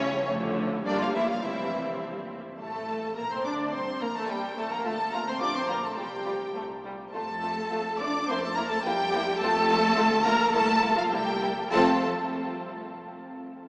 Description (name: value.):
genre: quick classical-period movement for string orchestra.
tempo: 105 BPM.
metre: 2/4.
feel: rubato.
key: F major.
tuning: A4 = 441 Hz.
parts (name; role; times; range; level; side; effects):
warm symphonic violin section; melody; 0.0-12.1 s; C#5 to D6; -28 LUFS; equal; none.
warm symphonic violin section; second line; 0.0-12.1 s; G3 to F4; -32 LUFS; equal; none.
warm symphonic cello section; bass; 0.0-12.1 s; C#3 to D4; -34 LUFS; equal; none.
warm symphonic viola section; accompaniment; 0.3-12.1 s; D3 to D5; -31 LUFS; equal; none.
rich symphonic double bass section; bass; 0.3-12.1 s; G1 to G2; -39 LUFS; equal; none.
room: wet cathedral reverb, RT60 5.2 s.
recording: recorded in a church or concert hall, small speaker sound.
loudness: -24 LUFS.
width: side -28 dB against mid.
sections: 0.0-2.6 A section; 2.6-11.7 B section; 11.7-12.9 C section.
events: none.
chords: 0.3 Dm/F; 0.9 Gm; 1.4 C; 2.6 Bbmaj9/A; 3.7 C5; 4.9 D5; 5.4 Gm/Bb (rootless); 6.0 C5; 7.2 F; 8.3 C7/F (rootless); 9.4 F; 10.0 D5; 10.5 C7; 11.7 F.